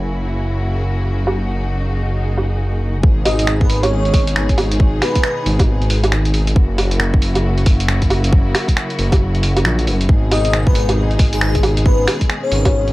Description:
future garage; 136 BPM; 4/4; swing 62% on 16ths; G# minor; A4 = 440 Hz
warm studio string section; sustained chords; 0.0-12.9 s; B2 to G#4; -24 LUFS; equal; sidechain pumping
dark detuned saw bass; bass; 0.0-12.9 s; F#1 to A#1; -17 LUFS; equal; tube saturation, sidechain pumping
backwards swelling texture; texture; 0.0-3.0 s; G#4 to G#5; -35 LUFS; right 1 dB; built-in reverb
lo-fi sampler-style drum kit; drums; 1.3-12.9 s; finger snaps, hi-hat, woodblock; -20 LUFS; right 1 dB
electronic kick drum; drums; 3.0-12.7 s; -14 LUFS; equal
airy dreamy lead; melody; 3.2-5.5, 10.3-12.9 s; G#4 to D#5; -22 LUFS; left 1 dB; chorus, tape echo
little or no reverb; dry, gritty hardware recording, cassette tape; -14 LUFS; side -18 dB against mid
0.0-3.0 A section; 3.0-12.9 B section
0.0 F#7; 3.0 G#m; 6.6 F#7; 10.1 G#m

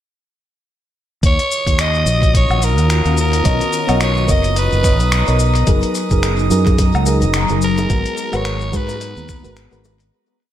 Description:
sunset chillout; 108 BPM; 4/4; swing 57% on 16ths; A4 = 439 Hz
shimmering ambient pad; sustained chords; 1.9-10.1 s; D#3 to A#5; -24 LUFS; left 1 dB; chorus, built-in reverb, phaser
fretless electric bass; bass; 1.2-10.1 s; F#1 to G#2; -17 LUFS; equal; tube saturation, lush chorus
dusty soul sampler-style drum kit; drums; 1.2-10.1 s; finger snaps, hi-hat, shaker, woodblock; -24 LUFS; left 2 dB; tape echo
electronic kick drum; drums; 1.2-9.4 s; -16 LUFS; equal
drifting glass-harmonics texture; texture; 2.1-10.1 s; D#6; -28 LUFS; right 6 dB; chorus, built-in reverb
raspy soprano saxophone; melody; 1.3-9.9 s; A#4 to D#5; -21 LUFS; left 1 dB; tape echo
mellow FM electric piano; accompaniment; 3.4-10.1 s; F#3 to D#5; -22 LUFS; moving between left 2 dB and right 4 dB; chorus, auto-pan, vintage 12-bit sampler grit, tape echo
bongos; percussion; 6.5-10.0 s; -31 LUFS; left 1 dB
moderate echo chamber reverb, RT60 1.9 s; echo-heavy mix; -13 LUFS; side -11 dB against mid
1.2-10.1 groove
fade-out 7.2-10.1
1.2 D#m9; 3.5 Bmaj9; 5.7 F#69; 7.9 G#m9

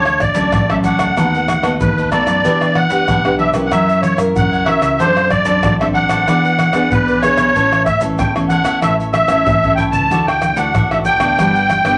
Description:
samba and choro; 94 BPM; 4/4; straight; D major; A4 = 440 Hz
musette accordion; melody; 0.0-12.0 s; B4 to A5; -17 LUFS; equal
cavaquinho; accompaniment; 0.0-12.0 s; D4 to F#5; -27 LUFS; equal
nylon-string guitar; accompaniment; 0.0-12.0 s; A2 to B4; -23 LUFS; equal
modern bright fingered electric bass; bass; 0.0-12.0 s; G1 to F#2; -25 LUFS; equal
tube shaker, pandeiro, tamborim and surdo; percussion; 0.1-12.0 s; -21 LUFS; equal
wet small room reverb, RT60 0.6 s; -14 LUFS; mono
0.0-12.0 A section
drum fill 9.2-10.1
0.0 Dmaj7; 1.2 B7/D#; 2.4 Em7; 3.7 F#7; 5.0 D7/F#; 6.3 E7; 7.6 A; 10.1 Dadd9; 11.4 Gmaj7

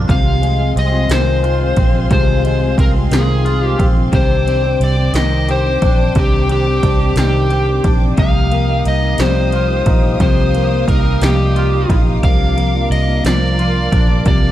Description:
six-eight pop ballad; 59 BPM (dotted quarters); 6/8; straight; C minor; A4 = 441 Hz
direct-recorded clean electric guitar; accompaniment; 0.0-14.5 s; C3 to G4; -21 LUFS; right 1 dB; double-tracked left and right
picked steel-string acoustic guitar; arpeggios; 0.0-14.5 s; C3 to G4; -23 LUFS; left 4 dB
vintage muted fingered electric bass; bass; 0.0-14.5 s; Bb1 to C2; -16 LUFS; equal
overdriven slide guitar; melody; 0.1-14.5 s; G4 to F5; -19 LUFS; left 3 dB; analog delay
rich studio string section; sustained chords; 0.1-14.5 s; G4 to Eb6; -27 LUFS; left 1 dB
80s electronic pad drums; drums; 0.1-14.4 s; kick drum, ride cymbal, snare drum; -16 LUFS; equal
digital ambience; dark, warm production; -12 LUFS; side -13 dB against mid
0.0-14.5 A section
0.1 Ab6; 4.1 Cmadd9; 8.2 Ebadd9; 12.2 Bb

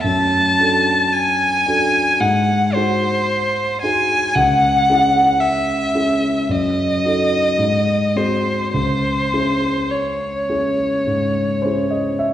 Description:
classical, romantic duo for violin and grand piano; 51-58 BPM; 4/4; rubato; C# minor; A4 = 440 Hz
rich violin; melody; 0.0-12.2 s; B#4 to A5; -17 LUFS; equal
dark concert grand piano; accompaniment; 0.0-12.3 s; C#2 to E5; -19 LUFS; equal
wet scoring stage reverb, RT60 1.9 s; heard from further back in the room, nothing above 10.8 kHz; -15 LUFS; side -11 dB against mid
0.0-12.3 A section
0.1 D/F#; 2.2 G#7; 4.4 C#m; 6.5 D#dim/F#; 7.6 G#7; 8.7 C#m

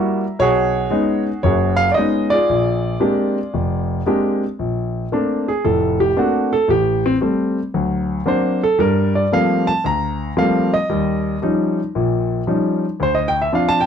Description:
solo jazz; 114 BPM; 4/4; swing 67% on 8ths; Bb major from 4.6 s; A4 = 441 Hz
warm grand piano; solo; 0.0-13.9 s; F1 to Db6; -16 LUFS; equal
moderate studio reverb, RT60 0.5 s; dark, warm production; -16 LUFS; side -8 dB against mid
0.0-4.6 A section; 4.6-13.9 B section
grand piano solo 4.6-13.9
0.4 B69; 2.5 Bb13; 4.6 Bbmaj9; 6.7 Am7; 7.7 Daug7; 8.8 Gm11; 10.9 Eb9; 13.0 Dm7

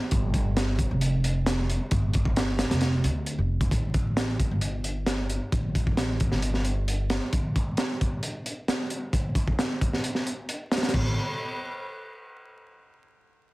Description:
breakbeat, breaks; 133 BPM; 4/4; straight; A4 = 442 Hz
upright bass; bass; 0.1-7.2, 10.9-11.1 s; F1 to D2; -27 LUFS; equal; tube saturation
crunchy breakbeat drum kit; drums; 0.1-11.0 s; crash cymbal, hi-hat, kick drum, snare drum; -26 LUFS; equal
little or no reverb; dense, heavily limited modern master, vinyl crackle; -24 LUFS; side -20 dB against mid
0.0-3.7 A section; 3.7-10.9 B section; 10.9-12.7 C section
drop 0.0-3.7

